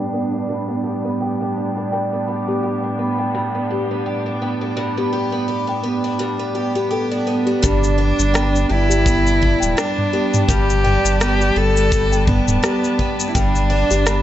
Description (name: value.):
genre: folktronica.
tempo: 84 BPM.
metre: 4/4.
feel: swing 56% on 16ths.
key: G major.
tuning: A4 = 440 Hz.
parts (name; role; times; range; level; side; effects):
dark cello; melody; 0.0-1.6, 6.6-14.2 s; B3 to A4; -21 LUFS; equal; none.
muted string quartet; sustained chords; 0.0-14.2 s; A2 to A5; -26 LUFS; equal; none.
picked twelve-string acoustic guitar; arpeggios; 0.0-14.2 s; G2 to G4; -22 LUFS; right 2 dB; low-pass filter, digital delay.
small celesta; second line; 1.9-14.2 s; G4 to G5; -26 LUFS; left 3 dB; tape echo.
warm sub bass; bass; 7.6-14.2 s; D1 to G1; -19 LUFS; equal; none.
kick drum; drums; 7.6-13.5 s; none; -23 LUFS; equal; none.
organic electronic drum kit; drums; 7.6-14.2 s; cabasa, rim click, toms; -22 LUFS; left 1 dB; low-pass filter on snare, low-pass filter on perc, low-pass filter on toms, low-pass filter on room.
room: light reverb, small room ambience.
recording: low-pass filter, nothing above 8.0 kHz.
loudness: -16 LUFS.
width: side -12 dB against mid.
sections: 0.0-7.6 A section; 7.6-14.2 B section.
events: filter sweep on twelve-string acoustic guitar 0.0-7.6; filter sweep 0.0-7.6.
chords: 0.0 Gadd9.